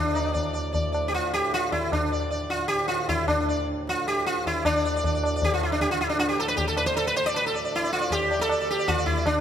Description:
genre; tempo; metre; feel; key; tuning
indian classical, Hindustani; 155 BPM; 3/4; straight; D raga bhimpalasi; A4 = 443 Hz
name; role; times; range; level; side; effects
sitar; melody; 0.0-9.4 s; D4 to D5; -24 LUFS; equal; none
hand-pumped harmonium; drone; 0.0-9.4 s; D2 to A2; -35 LUFS; right 2 dB; none
tabla; percussion; 0.4-9.4 s; none; -28 LUFS; left 2 dB; none
room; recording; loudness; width
wet concert hall reverb, RT60 1.7 s; none; -23 LUFS; side -9 dB against mid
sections
0.0-4.6 A section; 4.6-9.4 B section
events
speeding up 0.0-9.4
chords
none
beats
0.34 0.74 | 1.13 1.52 1.92 | 2.31 2.70 3.09 | 3.48 3.87 4.26 | 4.64 5.03 5.42 | 5.81 6.19 6.58 | 6.96 7.35 7.73 | 8.12 8.50 8.88 | 9.27

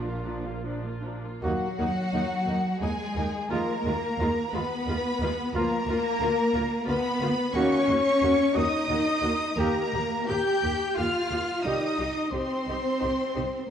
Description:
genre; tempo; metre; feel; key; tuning
classical, slow romantic movement for symphony orchestra; 88 BPM; 3/4; rubato; Eb minor; A4 = 440 Hz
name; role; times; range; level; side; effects
rich symphonic violin section; melody; 0.0-13.7 s; D4 to G6; -35 LUFS; equal; none
rich chamber violin section; second line; 0.0-13.7 s; F4 to G5; -33 LUFS; left 4 dB; none
rich chamber viola section; accompaniment; 0.0-13.4 s; F3 to G4; -35 LUFS; right 1 dB; none
dark French horn section; sustained chords; 0.0-13.7 s; Gb3 to G4; -30 LUFS; left 2 dB; none
dark trumpet; stabs; 0.0-11.9 s; F4 to G4; -33 LUFS; right 1 dB; none
rich chamber double bass section; bass; 0.0-13.4 s; Bb1 to Eb2; -34 LUFS; right 3 dB; none
rich studio cello section; bass; 0.0-13.7 s; Bb2 to G4; -31 LUFS; right 1 dB; none
warm clarinet; second line; 0.2-1.2 s; D4; -45 LUFS; left 2 dB; none
mellow flute section; second line; 0.3-13.5 s; Gb5 to G6; -34 LUFS; left 1 dB; none
clear trombone section; sustained chords; 1.4-11.9 s; Eb3 to Bb3; -38 LUFS; right 3 dB; none
room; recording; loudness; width
wet scoring stage reverb, RT60 1.7 s; worn, warbling old tape, cassette tape, warbly pitch drift; -24 LUFS; side -8 dB against mid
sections
0.0-1.4 A section; 1.4-13.7 B section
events
none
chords
0.0 Bb; 1.4 Ebm; 3.5 Fm7b5/Eb; 5.5 Bb/D; 7.5 Ebm; 9.6 Eb; 11.6 Cm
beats
0.66 | 1.43 2.13 2.82 | 3.50 4.18 4.86 | 5.54 6.20 6.87 | 7.54 8.22 8.89 | 9.57 10.28 10.97 | 11.64 12.32 13.01 | 13.69

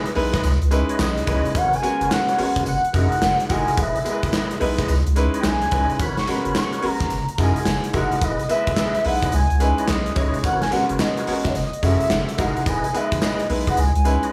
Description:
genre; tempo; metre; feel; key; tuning
R&B, new jack swing; 108 BPM; 4/4; swing 64% on 16ths; G# minor; A4 = 439 Hz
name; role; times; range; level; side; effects
warm velvety synth lead; melody; 0.0-14.3 s; B4 to C#6; -26 LUFS; equal; chorus, tape echo
bright concert grand piano; accompaniment; 0.0-14.3 s; G#3 to C#5; -28 LUFS; equal; none
tonewheel organ; stabs; 0.0-14.3 s; E4 to D#5; -33 LUFS; equal; overdrive, fast rotary speaker
gated 80s drum kit; drums; 0.1-14.3 s; handclaps, hi-hat, kick drum, snare drum, tambourine; -27 LUFS; equal; none
egg shaker; percussion; 0.1-14.3 s; none; -49 LUFS; equal; none
round analog bass; bass; 0.2-14.2 s; E1 to F#2; -25 LUFS; equal; none
room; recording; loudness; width
light reverb, studio ambience; small room reverb; -21 LUFS; mono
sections
0.0-14.3 A section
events
kick muted 13.8-14.3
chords
0.4 C#m9; 1.6 G#m11; 2.7 F#13; 3.8 Emaj7; 4.9 C#m9; 6.0 G#m11; 7.1 F#13; 8.2 Emaj7; 9.3 C#m9; 10.4 G#m11; 11.6 F#13; 12.7 Emaj7; 13.8 C#m9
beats
0.44 0.99 | 1.55 2.11 2.66 3.22 | 3.77 4.33 4.88 5.44 | 6.00 6.55 7.11 7.66 | 8.22 8.77 9.33 9.88 | 10.44 10.99 11.55 12.11 | 12.66 13.22 13.77

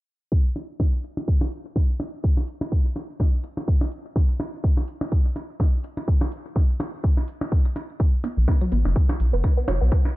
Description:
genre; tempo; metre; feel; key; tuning
minimal techno; 125 BPM; 4/4; swing 56% on 16ths; unclear; A4 = 440 Hz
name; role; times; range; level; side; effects
electronic kick drum; drums; 0.3-10.0 s; none; -19 LUFS; equal; none
electronic hi-hat; drums; 0.6-9.8 s; none; -61 LUFS; right 2 dB; none
percussion blips and claves; percussion; 0.6-10.1 s; none; -32 LUFS; equal; ping-pong delay
resonant blip pluck; riff; 8.2-9.8 s; F#3 to B3; -29 LUFS; right 1 dB; phaser, sidechain pumping, tape echo
rubbery square bass; bass; 8.4-9.9 s; F#1 to B1; -20 LUFS; equal; sidechain pumping
room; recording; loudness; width
digital ambience; dark, warm production, low-pass filter; -21 LUFS; side -18 dB against mid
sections
0.3-10.2 A section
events
filter sweep 0.3-10.2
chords
0.3 B5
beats
| 0.32 0.80 1.28 1.76 | 2.24 2.72 3.20 3.68 | 4.16 4.64 5.12 5.60 | 6.08 6.56 7.04 7.52 | 8.00 8.48 8.96 9.44 | 9.92

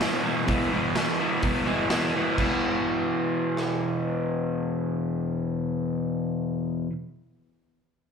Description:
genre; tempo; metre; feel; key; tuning
garage rock duo or trio; 126 BPM; 4/4; straight; unclear; A4 = 441 Hz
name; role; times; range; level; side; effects
crunchy overdriven guitar; riff; 0.0-6.9 s; E2 to E3; -25 LUFS; left 1 dB; slapback echo
raw garage drum kit; drums; 0.0-3.7 s; crash cymbal, hi-hat, kick drum, rim click, snare drum; -30 LUFS; right 1 dB; none
room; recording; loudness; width
little or no reverb; live gig heard through the venue's PA, club reverb; -24 LUFS; side -6 dB against mid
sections
0.0-2.4 A section; 2.4-6.2 B section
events
none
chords
0.0 E5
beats
0.01 | 0.48 0.96 1.43 1.91 | 2.38 2.85 3.33 3.80 | 4.28 4.75 5.23 5.70

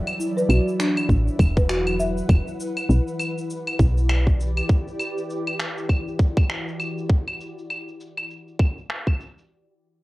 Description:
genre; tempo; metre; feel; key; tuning
organic downtempo; 100 BPM; 4/4; swing 59% on 16ths; E minor; A4 = 439 Hz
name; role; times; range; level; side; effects
ethereal airy pad; sustained chords; 0.0-7.1 s; E3 to F#5; -30 LUFS; equal; ensemble chorus, built-in reverb, sidechain pumping
electronic claves, shaker and finger snaps; drums; 0.1-9.5 s; none; -29 LUFS; equal; overdrive, low-pass filter on perc, cassette tape, low-pass filter on snare, low-pass filter on room
folk marimba with soft mallets; arpeggios; 0.2-2.3 s; D4 to E5; -25 LUFS; equal; low-pass filter, analog delay
woody FM bass; bass; 0.5-4.6 s; E1 to B1; -20 LUFS; equal; tube saturation
electronic kick drum; drums; 1.1-9.2 s; none; -19 LUFS; equal; overdrive, cassette tape
room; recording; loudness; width
light reverb; home recording on cassette; -20 LUFS; side -19 dB against mid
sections
0.0-9.5 A section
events
none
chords
0.0 Bsus4; 2.3 Em7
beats
0.49 1.09 1.69 | 2.29 2.89 3.49 4.09 | 4.69 5.29 5.89 6.49 | 7.09 7.69 8.29 8.89

